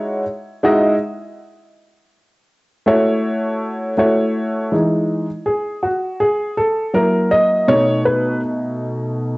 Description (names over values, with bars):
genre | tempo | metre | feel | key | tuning
hip hop | 81 BPM | 4/4 | swing 64% on 16ths | E major | A4 = 440 Hz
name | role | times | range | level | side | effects
dark upright piano | solo | 0.0-9.4 s | B2 to D#5 | -15 LUFS | equal | none
room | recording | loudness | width
moderate spring reverb, RT60 1.6 s, small room reverb | home recording on cassette, nothing above 8.0 kHz | -15 LUFS | side -24 dB against mid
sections
0.0-4.7 A section; 4.7-9.4 B section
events
upright piano solo 4.7-9.4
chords
0.0 Emaj13; 1.8 A6; 4.7 Emaj7; 6.9 F#6; 7.7 B7